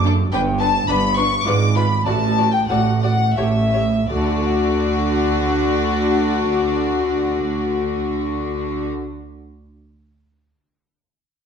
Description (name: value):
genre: classical, baroque-style concerto movement with solo episodes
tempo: 80-110 BPM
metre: 3/4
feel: straight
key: D major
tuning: A4 = 440 Hz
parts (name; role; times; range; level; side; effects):
- mellow baroque flute; melody; 0.0-8.9 s; F#4 to D6; -23 LUFS; left 4 dB; none
- warm chamber violin section; melody; 0.0-8.9 s; D5 to D6; -25 LUFS; left 6 dB; none
- lute; accompaniment; 0.0-9.2 s; F#2 to F#5; -31 LUFS; left 1 dB; none
- rich chamber cello section; bass; 0.0-8.9 s; F#2 to D3; -23 LUFS; right 4 dB; none
- rich chamber double bass section; bass; 0.0-8.9 s; F#1 to D2; -23 LUFS; right 2 dB; none
- rich chamber violin section; second line; 0.1-8.9 s; F#4 to D5; -28 LUFS; left 6 dB; none
- dark chamber viola section; accompaniment; 0.1-8.9 s; D4 to G4; -28 LUFS; right 3 dB; none
room: wet recital hall reverb, RT60 1.3 s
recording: dark, warm production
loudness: -16 LUFS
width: side -7 dB against mid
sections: 0.0-4.1 A section; 4.1-8.6 B section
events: slowing down 0.0-4.1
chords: 0.3 G; 1.5 G#dim7; 2.1 D/A; 3.4 A7; 4.1 D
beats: | 0.32 0.88 1.46 | 2.06 2.70 3.37 | 4.10 4.84 5.58 | 6.32 7.07 7.81